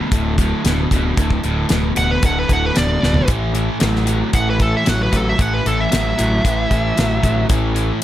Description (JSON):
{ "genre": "classic rock", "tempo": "114 BPM", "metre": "4/4", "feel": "straight", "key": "D major", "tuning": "A4 = 440 Hz", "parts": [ { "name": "distorted electric guitar", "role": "riff", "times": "0.0-8.0 s", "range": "D2 to F#3", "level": "-20 LUFS", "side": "equal", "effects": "distortion" }, { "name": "growling picked electric bass", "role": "bass", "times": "0.1-7.9 s", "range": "D1 to A1", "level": "-20 LUFS", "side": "equal", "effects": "overdrive" }, { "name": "damped 70s drum kit", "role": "drums", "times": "0.1-8.0 s", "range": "hi-hat, kick drum, snare drum, toms", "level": "-18 LUFS", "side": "equal", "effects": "none" }, { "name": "smooth overdriven lead guitar", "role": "melody", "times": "2.0-7.5 s", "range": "A4 to F#5", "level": "-20 LUFS", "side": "right 1 dB", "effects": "none" } ], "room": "little or no reverb", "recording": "none", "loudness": "-15 LUFS", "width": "side -13 dB against mid", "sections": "0.0-8.0 A section", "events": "lead electric guitar solo 0.0-8.0; drum fill 3.0", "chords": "0.0 D5; 3.3 A5" }